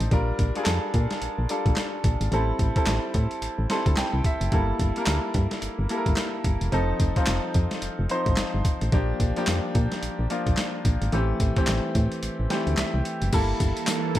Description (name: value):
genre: R&B, new jack swing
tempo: 109 BPM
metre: 4/4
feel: swing 60% on 16ths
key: G dorian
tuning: A4 = 441 Hz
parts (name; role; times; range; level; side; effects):
- clear concert grand piano; accompaniment; 0.0-14.2 s; E3 to C6; -27 LUFS; equal; none
- solid FM bass; bass; 0.0-14.2 s; E1 to Bb2; -25 LUFS; equal; none
- boom bap sampler-style drum kit; drums; 0.0-14.2 s; crash cymbal, handclaps, hi-hat, kick drum, snare drum, tambourine; -26 LUFS; equal; none
- phased analog pad; sustained chords; 13.6-14.2 s; E3 to A4; -30 LUFS; right 4 dB; phaser, chorus
room: little or no reverb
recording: none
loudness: -22 LUFS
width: side -13 dB against mid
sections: 0.0-13.3 A section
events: grand piano fill 3.4-4.5, 12.2-13.3; break 12.2-13.3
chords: 0.1 Bb6; 2.3 Am7; 4.5 Gm69; 6.7 F7; 8.9 Bb6; 11.1 Am7; 13.3 Gm69